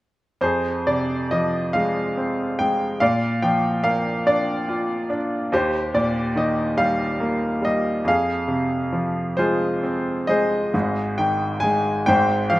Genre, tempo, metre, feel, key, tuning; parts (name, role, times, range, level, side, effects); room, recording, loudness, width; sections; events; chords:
classical, lyrical solo piano; 44-48 BPM (dotted quarters); 6/8; rubato; F dorian; A4 = 439 Hz
bright baby grand piano; solo; 0.4-12.6 s; Ab1 to Ab5; -19 LUFS; equal
light reverb; close, detailed microphones; -19 LUFS; side -17 dB against mid
0.4-10.7 A section; 10.7-12.6 B section
0.4 Fm; 3.0 Bb; 5.5 Eb; 8.1 Fm; 10.7 Ab; 12.1 Fm/Ab